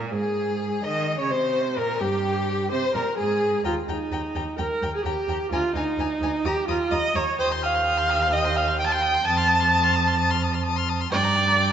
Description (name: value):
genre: quick classical-period movement for string quartet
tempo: 128 BPM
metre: 4/4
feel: straight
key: Ab major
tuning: A4 = 439 Hz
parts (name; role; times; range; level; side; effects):
- rich cello; bass; 0.0-11.7 s; D2 to Eb3; -27 LUFS; right 3 dB; none
- warm violin; melody; 0.1-11.7 s; G4 to G6; -32 LUFS; left 9 dB; none
- rich violin; second line; 0.1-11.7 s; G4 to C6; -30 LUFS; left 4 dB; none
- rich viola; accompaniment; 0.1-11.7 s; Eb4 to A5; -23 LUFS; right 2 dB; none
room: moderate concert hall reverb, RT60 2.4 s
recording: nothing above 7.8 kHz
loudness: -21 LUFS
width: side -9 dB against mid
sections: 0.0-11.7 A section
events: none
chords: 0.0 Ab; 1.8 Gm; 2.7 Ab; 3.7 Eb; 5.5 Bb7/D; 6.5 Eb5; 7.4 Cm/Eb; 9.3 F7; 11.1 Gm